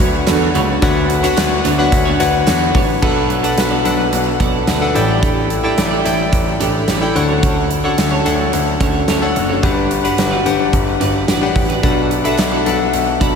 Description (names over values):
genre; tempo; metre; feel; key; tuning
1980s-style pop; 109 BPM; 4/4; straight; B minor; A4 = 441 Hz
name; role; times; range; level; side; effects
chorused retro synth keys; accompaniment; 0.0-13.4 s; G2 to B5; -16 LUFS; left 3 dB; none
twelve-string electric guitar; riff; 0.0-13.3 s; B3 to D5; -22 LUFS; right 4 dB; lush chorus, tape echo
mellow synth brass; stabs; 0.0-0.5 s; F#3 to A4; -26 LUFS; right 8 dB; none
warm concert grand piano; bass; 0.0-13.4 s; F#1 to E2; -21 LUFS; left 1 dB; none
huge arena drum kit; drums; 0.0-13.3 s; crash cymbal, hi-hat, kick drum, snare drum, tambourine; -19 LUFS; right 1 dB; none
group handclap; percussion; 0.3-2.6, 12.4-12.5 s; none; barely audible; none; none
room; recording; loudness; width
wet huge ambient reverb, RT60 7.4 s; dreamy mix soaked in reverb; -13 LUFS; side -6 dB against mid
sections
0.0-3.0 A section; 3.0-13.4 B section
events
none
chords
0.0 Bmadd9; 3.0 Bm7; 5.0 A7sus4; 7.2 Dmaj7; 9.6 Gmaj7; 11.8 Bm7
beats
0.28 | 0.82 1.38 1.93 2.48 | 3.03 3.58 4.13 4.68 | 5.23 5.78 6.33 6.88 | 7.43 7.98 8.53 9.08 | 9.63 10.18 10.73 11.28 | 11.83 12.38 12.94